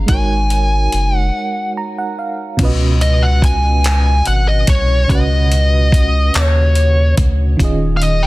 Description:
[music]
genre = slow six-eight R&B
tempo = 48 BPM (dotted quarters)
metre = 6/8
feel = straight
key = unclear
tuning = A4 = 438 Hz
[part]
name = FM electric piano with tremolo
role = accompaniment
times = 0.0-8.3 s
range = B2 to A#5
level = -21 LUFS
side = right 2 dB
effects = none
[part]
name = saturated sub bass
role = bass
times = 0.0-8.3 s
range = D#1 to D#2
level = -14 LUFS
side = equal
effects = none
[part]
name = fuzz lead guitar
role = melody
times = 0.1-8.3 s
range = C#5 to G#5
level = -19 LUFS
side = equal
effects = distortion, tape echo
[part]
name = dusty soul sampler-style drum kit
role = drums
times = 0.1-8.2 s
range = crash cymbal, handclaps, hi-hat, kick drum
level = -16 LUFS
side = equal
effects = soft clipping on snare
[sound]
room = little or no reverb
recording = dense, heavily limited modern master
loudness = -12 LUFS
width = side -19 dB against mid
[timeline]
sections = 0.0-2.6 A section; 2.6-8.3 B section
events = break 1.3-2.6; FM electric piano fill 1.3-2.6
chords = 0.1 G#9sus4; 2.6 C#9sus4; 7.6 D#9sus4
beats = | 0.09 1.34 | 2.59 3.84 | 5.09 6.34 | 7.59

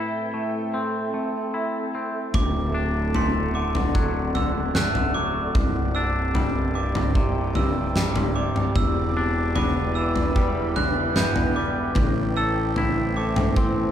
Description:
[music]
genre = post-rock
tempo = 75 BPM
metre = 4/4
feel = straight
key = unclear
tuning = A4 = 441 Hz
[part]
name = ethereal airy pad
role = sustained chords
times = 0.0-13.9 s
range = C4 to G5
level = -30 LUFS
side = right 1 dB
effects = ensemble chorus, built-in reverb
[part]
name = twangy electric guitar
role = arpeggios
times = 0.0-13.9 s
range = C2 to A4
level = -28 LUFS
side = left 2 dB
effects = none
[part]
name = glockenspiel with hard plastic mallets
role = arpeggios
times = 2.3-13.9 s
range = C6 to G6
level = -29 LUFS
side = right 3 dB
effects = none
[part]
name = fuzz fingered electric bass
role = bass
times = 2.3-13.9 s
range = C1 to A1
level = -27 LUFS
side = equal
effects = overdrive
[part]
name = huge arena drum kit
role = drums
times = 2.3-13.8 s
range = kick drum, snare drum, toms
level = -24 LUFS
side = equal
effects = none
[sound]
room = moderate recital hall reverb, RT60 1.6 s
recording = recorded in a church or concert hall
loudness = -21 LUFS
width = side -10 dB against mid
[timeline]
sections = 0.0-13.9 A section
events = none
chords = 0.0 Am7; 2.3 D7; 5.6 Csus2; 8.8 Em7; 12.0 Am7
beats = 0.74 1.54 | 2.34 3.15 3.95 4.75 | 5.55 6.36 7.16 7.96 | 8.76 9.56 10.37 11.17 | 11.97 12.77 13.57

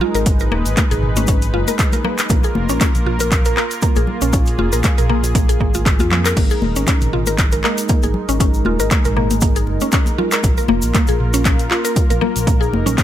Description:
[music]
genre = afro house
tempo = 118 BPM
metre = 4/4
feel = swing 55% on 16ths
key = Bb phrygian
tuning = A4 = 440 Hz
[part]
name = warm analog pad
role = sustained chords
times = 0.0-13.0 s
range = Ab3 to Cb5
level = -24 LUFS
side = right 1 dB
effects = chorus, sidechain pumping
[part]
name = mallet-like synth pluck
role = arpeggios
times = 0.0-13.0 s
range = F3 to Bb4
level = -22 LUFS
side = left 1 dB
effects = chorus, phaser, sidechain pumping, dub echo
[part]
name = congas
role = percussion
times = 0.0-13.0 s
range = none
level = -24 LUFS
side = left 3 dB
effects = none
[part]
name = smooth gliding synth bass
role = bass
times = 0.1-13.0 s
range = Eb1 to F2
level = -21 LUFS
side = equal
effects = sidechain pumping
[part]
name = afro-pop drum kit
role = drums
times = 0.1-13.0 s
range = crash cymbal, handclaps, hi-hat, toms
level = -22 LUFS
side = equal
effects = none
[part]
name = tube shaker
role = percussion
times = 0.2-13.0 s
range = none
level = -29 LUFS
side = left 2 dB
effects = none
[part]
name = electronic kick drum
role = drums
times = 0.3-13.0 s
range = none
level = -16 LUFS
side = equal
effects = overdrive
[sound]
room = digital ambience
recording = none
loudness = -14 LUFS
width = side -12 dB against mid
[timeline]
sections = 0.0-13.0 A section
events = none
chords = 0.0 Abmadd9; 2.3 Bb5; 6.4 Absus2; 10.4 Bbm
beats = | 0.27 0.77 1.28 1.79 | 2.30 2.81 3.32 3.83 | 4.33 4.84 5.35 5.86 | 6.37 6.88 7.38 7.89 | 8.40 8.91 9.42 9.93 | 10.44 10.94 11.45 11.96 | 12.47 12.98

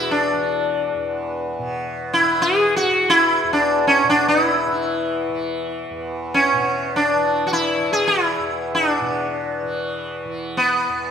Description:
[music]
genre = indian classical, Hindustani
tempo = free time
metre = none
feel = none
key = unclear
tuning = A4 = 439 Hz
[part]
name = sitar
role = melody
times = 0.0-11.1 s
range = B3 to G#4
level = -18 LUFS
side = equal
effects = none
[part]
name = tanpura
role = drone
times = 0.0-11.1 s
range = E2 to E3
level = -27 LUFS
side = right 1 dB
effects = none
[sound]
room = moderate scoring stage reverb, RT60 1.6 s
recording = minimal, uncompressed stereo recording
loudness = -17 LUFS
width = side -7 dB against mid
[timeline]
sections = 0.0-11.1 A section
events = none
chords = none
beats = free time

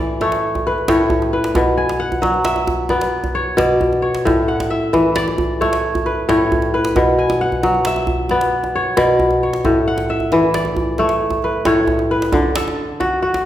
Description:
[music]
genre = west african traditional, West African string and xylophone music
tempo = 89 BPM (dotted quarters)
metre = 12/8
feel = straight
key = unclear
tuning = A4 = 440 Hz
[part]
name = kora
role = arpeggios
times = 0.0-13.5 s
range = A2 to G#5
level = -15 LUFS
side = left 1 dB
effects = none
[part]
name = djembe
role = percussion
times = 0.2-13.4 s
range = none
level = -22 LUFS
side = right 1 dB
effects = none
[sound]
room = wet recital hall reverb, RT60 1.5 s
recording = recorded in a church or concert hall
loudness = -15 LUFS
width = side -12 dB against mid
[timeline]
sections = 0.0-12.3 A section; 12.3-13.5 B section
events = none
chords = 0.0 A; 1.6 Bm; 4.3 A; 7.0 Bm; 9.6 A; 12.3 D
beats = 0.21 0.89 | 1.56 2.24 2.91 3.58 | 4.26 4.93 5.61 6.28 | 6.95 7.63 8.30 8.97 | 9.64 10.32 10.99 11.66 | 12.33 13.00

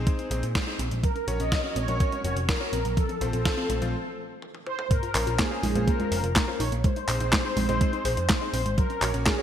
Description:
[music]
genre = italo disco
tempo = 124 BPM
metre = 4/4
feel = straight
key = Bb minor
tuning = A4 = 440 Hz
[part]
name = mellow synth brass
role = melody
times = 0.0-9.4 s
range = Ab4 to Eb5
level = -31 LUFS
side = equal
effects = chorus, ping-pong delay
[part]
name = warbly dusty pluck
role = arpeggios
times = 0.0-9.4 s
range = F3 to Bb4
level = -35 LUFS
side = right 2 dB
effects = chorus, ping-pong delay
[part]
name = bright electric grand piano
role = stabs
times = 0.0-9.4 s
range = C4 to Db5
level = -35 LUFS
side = left 2 dB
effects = none
[part]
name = overdriven picked electric bass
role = bass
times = 0.0-9.2 s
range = F1 to Bb2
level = -29 LUFS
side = equal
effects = tube saturation
[part]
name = clean 12-bit digital drum machine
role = drums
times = 0.1-9.4 s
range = congas, handclaps, hi-hat, snare drum, toms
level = -29 LUFS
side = right 1 dB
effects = high-pass filter on hats, high-pass filter on snare, high-pass filter on perc, high-pass filter on toms, high-pass filter on room
[part]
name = electronic kick drum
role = drums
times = 0.1-9.4 s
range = none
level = -25 LUFS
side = equal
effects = none
[sound]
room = moderate lush hall reverb, RT60 1.7 s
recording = bright 1980s-style digital production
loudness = -23 LUFS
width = side -10 dB against mid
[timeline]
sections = 0.0-4.9 A section; 4.9-9.4 B section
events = break 3.9-4.9; drum fill 4.4-4.9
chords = 0.0 Ab/Bb; 1.0 Gb/Bb; 3.0 F/Bb; 4.9 Bbmadd9; 6.8 Ab/Bb; 8.8 Gb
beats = 0.07 0.55 | 1.03 1.52 2.00 2.49 | 2.97 3.46 3.94 4.42 | 4.91 5.39 5.87 6.36 | 6.84 7.33 7.81 8.29 | 8.78 9.26

